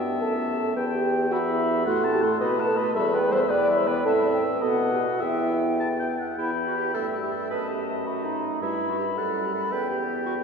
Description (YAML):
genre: quick classical-period movement for wind quintet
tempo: 108 BPM (dotted quarters)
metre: 6/8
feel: rubato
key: E minor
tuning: A4 = 440 Hz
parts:
  - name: mellow concert flute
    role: melody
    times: 0.0-10.4 s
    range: F#5 to C6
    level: -30 LUFS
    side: left 3 dB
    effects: none
  - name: warm oboe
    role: second line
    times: 0.0-10.4 s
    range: B4 to A5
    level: -32 LUFS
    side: left 2 dB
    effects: none
  - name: mellow French horn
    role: accompaniment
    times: 0.0-10.4 s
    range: G3 to D5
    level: -27 LUFS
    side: right 1 dB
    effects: none
  - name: warm clarinet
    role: accompaniment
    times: 0.0-10.3 s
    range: G3 to B4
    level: -31 LUFS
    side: right 3 dB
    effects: none
  - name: mellow bassoon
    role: bass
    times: 0.0-10.4 s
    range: E2 to B2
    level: -28 LUFS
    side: right 1 dB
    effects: none
room: wet church reverb, RT60 3.6 s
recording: heard from further back in the room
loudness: -22 LUFS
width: side -5 dB against mid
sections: 0.0-6.4 A section; 6.4-10.4 A section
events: none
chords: 0.0 Em; 1.9 F#dim/A; 2.4 B7; 3.0 Em; 4.1 Am; 4.6 B7; 5.2 Em; 7.5 B7/F#; 8.6 Em/G; 9.7 Em